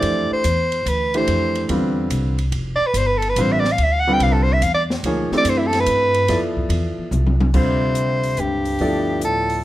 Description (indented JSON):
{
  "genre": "modal jazz",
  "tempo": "144 BPM",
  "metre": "3/4",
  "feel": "swing 67% on 8ths",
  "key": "D dorian",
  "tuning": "A4 = 439 Hz",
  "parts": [
    { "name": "warm soprano saxophone", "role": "melody", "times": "0.0-9.6 s", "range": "E4 to G5", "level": "-19 LUFS", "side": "equal", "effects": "none" },
    { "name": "warm baby grand piano", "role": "accompaniment", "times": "0.0-9.6 s", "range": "D3 to D5", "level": "-22 LUFS", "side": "equal", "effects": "none" },
    { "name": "upright bass", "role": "bass", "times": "0.0-9.6 s", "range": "F1 to G2", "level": "-22 LUFS", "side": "equal", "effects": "none" },
    { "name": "open jazz drum kit", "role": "drums", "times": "0.0-9.6 s", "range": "crash cymbal, hi-hat, kick drum, ride cymbal, snare drum, toms", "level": "-29 LUFS", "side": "equal", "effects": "none" },
    { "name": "mellow bass clarinet", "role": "second line", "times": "7.6-9.6 s", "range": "G2 to C3", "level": "-24 LUFS", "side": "left 1 dB", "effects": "none" }
  ],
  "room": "light reverb",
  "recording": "none",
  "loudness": "-16 LUFS",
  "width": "side -15 dB against mid",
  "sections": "0.0-7.5 A section; 7.5-9.6 B section",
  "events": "soprano saxophone solo 0.0-7.5; drum fill 7.1-7.5",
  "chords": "0.0 Dm9",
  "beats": "| 0.03 0.44 0.86 | 1.28 1.69 2.11 | 2.53 2.95 3.36 | 3.78 4.20 4.62 | 5.03 5.45 5.87 | 6.29 6.71 7.12 | 7.54 7.96 8.38 | 8.80 9.22 9.64"
}